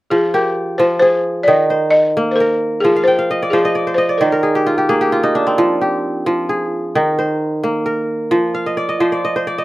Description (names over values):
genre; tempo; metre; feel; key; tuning
west african traditional; 88 BPM (dotted quarters); 12/8; straight; F dorian; A4 = 436 Hz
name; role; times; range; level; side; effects
balafon; melody; 0.1-5.1 s; Ab4 to Eb5; -15 LUFS; left 1 dB; slapback echo
kora; arpeggios; 0.1-9.6 s; Eb3 to G5; -15 LUFS; right 1 dB; slapback echo
room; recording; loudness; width
little or no reverb; recorded outdoors, with no room sound; -13 LUFS; side -18 dB against mid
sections
0.1-9.6 A section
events
kora fill 3.0-5.6, 8.5-9.6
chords
0.1 Fm; 1.5 Eb5; 2.8 Fm; 4.2 Eb5; 5.6 Fm; 6.9 Eb5; 8.3 Cmadd11/F